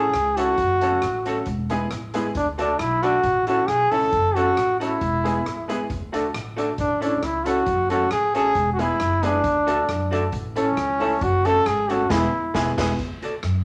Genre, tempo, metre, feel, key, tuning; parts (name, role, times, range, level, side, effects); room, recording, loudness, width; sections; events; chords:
ska; 135 BPM; 4/4; straight; A major; A4 = 440 Hz
brilliant trombone; melody; 0.0-12.6 s; C#4 to A4; -23 LUFS; equal
archtop guitar, miked and amplified; accompaniment; 0.0-13.3 s; B3 to D5; -33 LUFS; equal
warm upright piano; stabs; 0.0-12.9 s; G#3 to A4; -30 LUFS; equal
upright bass; bass; 0.0-13.6 s; E1 to F#2; -31 LUFS; equal
street-band drum kit; drums; 0.1-13.5 s; crash cymbal, hi-hat, kick drum, rim click, snare drum; -36 LUFS; equal
wet studio reverb, RT60 0.9 s; -22 LUFS; mono
0.0-13.0 A section
trombone solo 0.0-13.0; band accent 12.1-13.0
0.0 A; 0.6 F#m; 1.5 E; 2.4 D; 3.2 A; 4.1 F#m; 5.0 E; 5.9 D; 6.8 A; 7.7 F#m; 8.6 E; 9.4 D; 10.3 A; 11.2 F#m; 12.1 E; 13.0 D